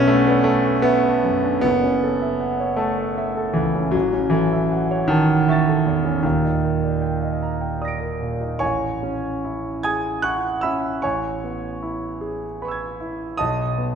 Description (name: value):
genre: classical, impressionist solo piano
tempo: 51 BPM (dotted quarters)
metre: 6/8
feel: rubato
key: A lydian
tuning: A4 = 440 Hz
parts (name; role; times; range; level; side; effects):
- clear concert grand piano; solo; 0.0-13.9 s; D#1 to D7; -19 LUFS; right 1 dB; none
room: wet scoring stage reverb, RT60 1.8 s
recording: minimal, uncompressed stereo recording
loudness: -19 LUFS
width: side -7 dB against mid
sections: 0.0-8.6 A section; 8.6-13.9 B section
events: none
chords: 0.0 Bm7; 1.6 F#m7; 3.9 A6; 6.2 D#maj7; 8.6 Amaj7; 11.0 C#m7/A; 13.4 B